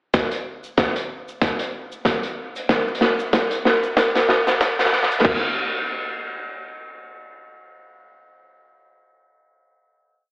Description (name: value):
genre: glitch hop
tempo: 94 BPM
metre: 4/4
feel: swing 56% on 16ths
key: none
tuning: none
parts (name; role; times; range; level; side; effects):
- electronic kick drum; drums; 0.1-5.4 s; none; -19 LUFS; equal; none
- raw garage drum kit; drums; 0.1-5.4 s; crash cymbal, hi-hat, snare drum; -19 LUFS; equal; none
- egg shaker; percussion; 0.1-5.2 s; none; -46 LUFS; equal; none
room: wet plate reverb, RT60 3.0 s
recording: played on a big sound system in a bare room, stone room reverb, high-pass filter, AM radio sound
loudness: -18 LUFS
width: side -30 dB against mid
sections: 0.1-5.3 build; 5.3-7.8 final hit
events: build-up 0.1-5.3; drum fill 0.1-5.3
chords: none